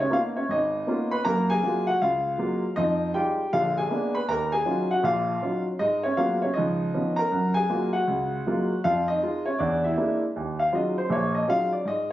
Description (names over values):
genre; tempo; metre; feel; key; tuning
solo jazz; 158 BPM; 4/4; swing 63% on 8ths; Eb minor; A4 = 436 Hz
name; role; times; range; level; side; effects
warm grand piano; solo; 0.0-12.1 s; Ab1 to Cb6; -23 LUFS; equal; none
room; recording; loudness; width
moderate studio reverb, RT60 0.5 s; recorded on a phone in the room, studio reverb, compression, nothing above 7.6 kHz; -23 LUFS; side -14 dB against mid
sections
0.0-10.3 A section; 10.3-12.1 B section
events
grand piano solo 10.3-12.1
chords
0.0 Db13; 1.3 Gbmaj9; 2.8 Fm9; 3.5 Bb7b9; 4.3 Ebm9; 5.8 Abm11; 6.6 Db9; 7.3 Gbmaj9; 8.8 Fm7; 9.6 E7#11; 10.3 Ebm11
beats
0.12 0.49 0.87 | 1.25 1.63 2.01 2.39 | 2.77 3.15 3.52 3.90 | 4.28 4.66 5.04 5.42 | 5.80 6.17 6.55 6.93 | 7.31 7.69 8.07 8.45 | 8.82 9.20 9.58 9.96 | 10.34 10.72 11.10 11.48 | 11.86